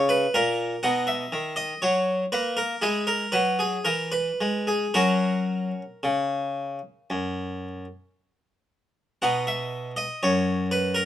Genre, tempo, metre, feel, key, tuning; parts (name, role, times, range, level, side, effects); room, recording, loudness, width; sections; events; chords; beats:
classical, baroque-style suite movement for harpsichord; 55-61 BPM; 4/4; rubato; B major; A4 = 439 Hz
harpsichord; solo; 0.0-11.1 s; F#2 to F#5; -23 LUFS; equal
light reverb; minimal, uncompressed stereo recording; -23 LUFS; side -11 dB against mid
0.0-9.2 A section; 9.2-11.1 A section
0.0 F# (rootless); 0.8 B; 2.8 E; 5.0 F#; 9.2 B
| 0.84 1.83 2.83 3.88 | 4.96 6.04 7.11 8.17 | 9.22 10.24